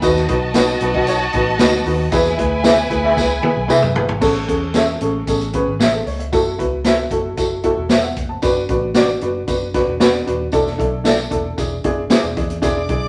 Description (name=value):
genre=uptempo 1960s-style soul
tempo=114 BPM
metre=4/4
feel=straight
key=A major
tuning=A4 = 442 Hz
part: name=warm studio violin section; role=second line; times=0.0-4.2, 12.6-13.1 s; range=E4 to D6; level=-25 LUFS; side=equal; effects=none
part: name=dark upright piano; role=accompaniment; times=0.0-13.1 s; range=C#4 to A5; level=-21 LUFS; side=equal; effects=none
part: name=vintage muted fingered electric bass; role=bass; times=0.0-13.1 s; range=D#1 to F#2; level=-27 LUFS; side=equal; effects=none
part: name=swinging big-band drum kit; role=drums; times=0.0-13.0 s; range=crash cymbal, hi-hat, kick drum, snare drum, toms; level=-23 LUFS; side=equal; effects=none
part: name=tambourine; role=percussion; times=0.0-12.7 s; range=none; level=-34 LUFS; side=equal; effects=none
part: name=electric guitar through a small old amp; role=stabs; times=0.6-12.2 s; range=E4 to E5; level=-22 LUFS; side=equal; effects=none
room=wet studio reverb, RT60 0.8 s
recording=none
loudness=-17 LUFS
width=mono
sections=0.0-4.2 A section; 4.2-13.1 B section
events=drum fill 3.2-4.2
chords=0.0 B; 2.1 E; 4.2 Amaj7; 6.3 F#m7; 8.4 D6/F#; 10.5 E7sus4; 11.6 E7